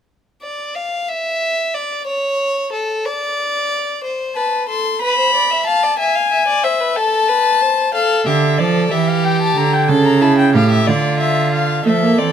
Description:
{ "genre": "classical, baroque-style fugue for string quartet", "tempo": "61 BPM (dotted quarters)", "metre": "6/8", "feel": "straight", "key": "D minor", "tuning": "A4 = 440 Hz", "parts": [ { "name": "rich violin", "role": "second line", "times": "0.4-12.3 s", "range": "E4 to F5", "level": "-19 LUFS", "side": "left 1 dB", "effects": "none" }, { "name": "rich violin", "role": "melody", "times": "4.4-12.3 s", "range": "D5 to C6", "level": "-16 LUFS", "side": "left 4 dB", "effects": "none" }, { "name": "rich cello", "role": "bass", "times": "8.3-12.3 s", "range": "A2 to F3", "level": "-14 LUFS", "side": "right 5 dB", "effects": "none" }, { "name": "rich viola", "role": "accompaniment", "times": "11.9-12.3 s", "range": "A3 to C4", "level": "-15 LUFS", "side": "right 2 dB", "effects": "none" } ], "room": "moderate stone room reverb, RT60 1.4 s", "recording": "none", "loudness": "-14 LUFS", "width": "side -8 dB against mid", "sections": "0.1-11.9 A section", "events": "none", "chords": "0.1 N.C.; 4.0 Am; 5.0 Bm7; 6.0 E; 7.0 Am; 7.9 Dm; 8.9 Em7; 9.9 A7/C#; 10.9 Dm" }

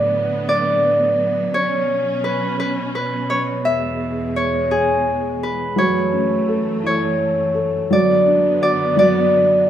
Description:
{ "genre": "children's music, lullaby", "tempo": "56 BPM (dotted quarters)", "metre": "6/8", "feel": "straight", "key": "unclear", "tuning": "A4 = 440 Hz", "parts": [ { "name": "Celtic harp", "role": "melody", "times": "0.0-9.7 s", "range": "G#4 to E5", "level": "-18 LUFS", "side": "equal", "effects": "none" }, { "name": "rich studio string section", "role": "sustained chords", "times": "0.0-9.7 s", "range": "E2 to C#4", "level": "-24 LUFS", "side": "right 1 dB", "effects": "none" }, { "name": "felt-muted upright piano", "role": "accompaniment", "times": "5.8-9.7 s", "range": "F#3 to A4", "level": "-20 LUFS", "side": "right 1 dB", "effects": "none" } ], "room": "moderate recital hall reverb, RT60 1.4 s", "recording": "minimal, uncompressed stereo recording", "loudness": "-16 LUFS", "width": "side -10 dB against mid", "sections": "0.0-9.7 A section", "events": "none", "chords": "0.0 D6/A; 1.5 Bsus2; 3.6 E; 5.8 F#m7; 7.9 Bm/F#" }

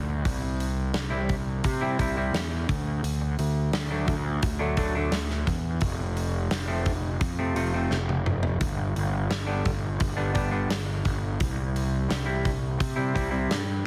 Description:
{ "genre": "quiet-loud alternative rock", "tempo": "86 BPM", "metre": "4/4", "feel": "straight", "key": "unclear", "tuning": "A4 = 440 Hz", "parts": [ { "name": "fuzz picked electric bass", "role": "bass", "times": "0.0-13.8 s", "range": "F1 to C3", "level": "-30 LUFS", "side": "equal", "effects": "overdrive" }, { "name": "big rock drum kit", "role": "drums", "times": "0.3-13.7 s", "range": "hi-hat, kick drum, snare drum, toms", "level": "-32 LUFS", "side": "equal", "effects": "none" }, { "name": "semi-hollow electric guitar", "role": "arpeggios", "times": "0.4-13.7 s", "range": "C3 to E4", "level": "-31 LUFS", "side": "equal", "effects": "subtle chorus, slapback echo" } ], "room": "little or no reverb", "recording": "heavily compressed radio sound", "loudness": "-27 LUFS", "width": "mono", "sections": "0.0-13.9 A section", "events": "drum fill 7.9-8.6", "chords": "0.3 C; 2.7 D; 5.8 F; 8.6 G; 11.4 C" }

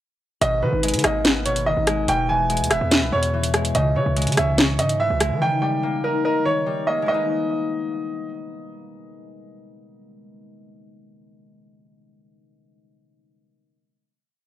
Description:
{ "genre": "hip hop, drill", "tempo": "144 BPM", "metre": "4/4", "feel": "half-time", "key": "G# harmonic minor", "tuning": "A4 = 443 Hz", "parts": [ { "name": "bright upright piano", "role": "melody", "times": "0.4-8.3 s", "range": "A#4 to G#5", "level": "-23 LUFS", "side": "right 2 dB", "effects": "analog delay" }, { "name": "concert harp", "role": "accompaniment", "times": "0.4-10.8 s", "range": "B2 to D#5", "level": "-25 LUFS", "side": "left 2 dB", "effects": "none" }, { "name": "hard-hitting 808-style bass", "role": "bass", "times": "0.4-5.4 s", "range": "E1 to E3", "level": "-26 LUFS", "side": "equal", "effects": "none" }, { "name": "drill drum kit", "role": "drums", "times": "0.4-5.3 s", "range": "hi-hat, rim click, snare drum", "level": "-21 LUFS", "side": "equal", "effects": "none" } ], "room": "light reverb, small room reverb", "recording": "dry, gritty hardware recording", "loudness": "-18 LUFS", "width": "side -12 dB against mid", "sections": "0.4-7.1 verse; 7.1-10.4 final chord", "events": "none", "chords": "0.4 G#madd9; 2.1 E; 3.7 C#m; 5.4 D#; 7.1 G#madd9" }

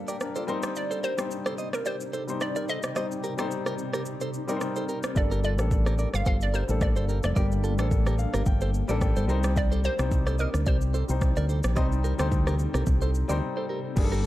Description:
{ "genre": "afrobeats", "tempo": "109 BPM", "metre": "4/4", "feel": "swing 55% on 16ths", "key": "unclear", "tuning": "A4 = 440 Hz", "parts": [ { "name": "warm grand piano", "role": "accompaniment", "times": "0.0-14.3 s", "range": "G3 to G5", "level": "-33 LUFS", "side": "left 4 dB", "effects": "none" }, { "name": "granular cloud pad", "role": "sustained chords", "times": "0.0-14.3 s", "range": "C3 to A5", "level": "-37 LUFS", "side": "left 1 dB", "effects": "built-in reverb" }, { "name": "direct-recorded clean electric guitar", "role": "riff", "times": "0.1-14.2 s", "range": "F4 to Eb5", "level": "-35 LUFS", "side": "right 3 dB", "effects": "tape echo" }, { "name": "afro-pop drum kit", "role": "drums", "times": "0.1-14.2 s", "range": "crash cymbal, kick drum, rim click, shaker", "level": "-28 LUFS", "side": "equal", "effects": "overdrive" }, { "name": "hollow square pluck", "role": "melody", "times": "0.8-13.4 s", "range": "Bb4 to F5", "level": "-33 LUFS", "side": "equal", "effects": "chorus" }, { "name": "fingered electric bass", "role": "bass", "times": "5.2-14.3 s", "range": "F1 to D2", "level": "-26 LUFS", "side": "equal", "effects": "none" } ], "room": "digital ambience", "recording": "dark, warm production", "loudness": "-24 LUFS", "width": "side -15 dB against mid", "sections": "0.0-14.0 A section", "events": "break 0.0-5.2, 13.4-14.0; grand piano fill 7.9-9.6", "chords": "0.5 Cm; 5.2 Gmadd9; 9.3 Cm" }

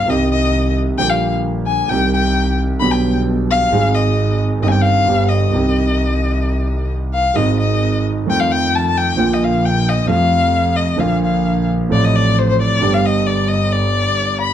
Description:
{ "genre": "tango", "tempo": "132 BPM", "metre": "4/4", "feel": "rubato", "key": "C minor", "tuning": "A4 = 440 Hz", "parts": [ { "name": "warm violin", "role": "second line", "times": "0.0-14.5 s", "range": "C5 to B5", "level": "-18 LUFS", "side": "left 4 dB", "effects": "none" }, { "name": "warm concert grand piano", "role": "accompaniment", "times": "0.1-14.5 s", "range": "G1 to Ab4", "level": "-17 LUFS", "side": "right 2 dB", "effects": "none" }, { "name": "clear double bass", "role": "bass", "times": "0.1-14.5 s", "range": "G1 to F2", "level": "-20 LUFS", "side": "equal", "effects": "none" } ], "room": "moderate large studio reverb, RT60 0.9 s", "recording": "none", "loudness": "-14 LUFS", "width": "side -10 dB against mid", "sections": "0.0-14.5 A section", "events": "violin solo 0.0-14.5", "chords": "0.1 Cm; 1.0 Gm/Bb; 1.9 Cm; 2.8 G/B; 3.7 Ab; 4.6 Cm/G; 5.1 G; 5.5 Cm; 7.4 Ab; 8.3 F7; 9.2 Bb; 10.1 F; 11.0 Bb; 11.9 F/A; 12.8 G" }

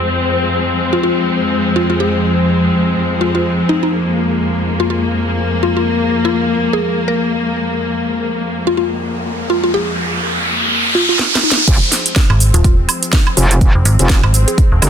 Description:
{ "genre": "bass house", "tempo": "124 BPM", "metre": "4/4", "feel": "swing 57% on 16ths", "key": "F minor", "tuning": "A4 = 439 Hz", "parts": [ { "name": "rich symphonic string section", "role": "sustained chords", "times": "0.0-14.9 s", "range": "F2 to C4", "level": "-16 LUFS", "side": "left 1 dB", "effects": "sidechain pumping, low-pass filter" }, { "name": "mallet-like synth pluck", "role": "melody", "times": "0.9-14.9 s", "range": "Eb4 to Bb4", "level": "-20 LUFS", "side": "left 1 dB", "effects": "chorus, phaser, tape echo" }, { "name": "riser", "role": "sound effects", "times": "9.0-11.7 s", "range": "none", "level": "-16 LUFS", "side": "right 2 dB", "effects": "none" }, { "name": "garage drum kit", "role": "drums", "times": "11.2-14.9 s", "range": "crash cymbal, hi-hat, shaker, snare drum, woodblock", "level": "-16 LUFS", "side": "right 2 dB", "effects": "small room ambience" }, { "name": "metallic wobble bass", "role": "bass", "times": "11.7-14.9 s", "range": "F1 to G1", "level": "-13 LUFS", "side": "equal", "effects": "chorus, overdrive, sidechain pumping" }, { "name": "electronic kick drum", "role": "drums", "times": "11.7-14.7 s", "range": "none", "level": "-12 LUFS", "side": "equal", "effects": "overdrive, small room ambience" }, { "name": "metallic FM bass", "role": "bass", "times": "12.3-14.8 s", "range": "Eb1 to Ab1", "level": "-12 LUFS", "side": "equal", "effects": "tube saturation, sidechain pumping" } ], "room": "light reverb", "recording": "dense, heavily limited modern master", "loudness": "-12 LUFS", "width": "side -8 dB against mid", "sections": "0.0-11.7 A section; 11.7-14.9 B section", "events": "filter sweep on string section 0.0-11.7; riser 9.0-11.7; drum fill 11.2-11.7; drop 11.7-14.9", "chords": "0.0 Fm" }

